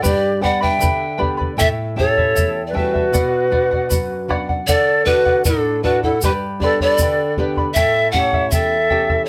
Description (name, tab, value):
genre	andean folk, Andean ensemble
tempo	78 BPM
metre	2/4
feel	straight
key	unclear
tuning	A4 = 440 Hz
part	bright polished pan flute	melody	0.0-9.3 s	A4 to G5	-20 LUFS	equal	none
part	breathy mellow large quena	second line	0.0-9.3 s	D4 to E5	-23 LUFS	equal	none
part	charango	accompaniment	0.0-9.3 s	E4 to B5	-27 LUFS	equal	none
part	flamenco guitar	accompaniment	0.0-9.3 s	E2 to G4	-28 LUFS	equal	none
part	tube shaker	percussion	0.0-8.7 s	none	-30 LUFS	equal	none
part	bombo	percussion	0.1-9.3 s	none	-24 LUFS	equal	none
room	moderate studio ambience, RT60 0.5 s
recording	close, detailed microphones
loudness	-17 LUFS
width	mono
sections	0.0-4.7 A section; 4.7-9.3 A section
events	none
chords	0.1 G; 1.6 A7; 3.1 Bm; 4.7 D; 6.2 G; 7.8 A7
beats	| 0.05 0.82 | 1.60 2.37 | 3.14 3.91 | 4.68 5.45 | 6.22 6.99 | 7.76 8.53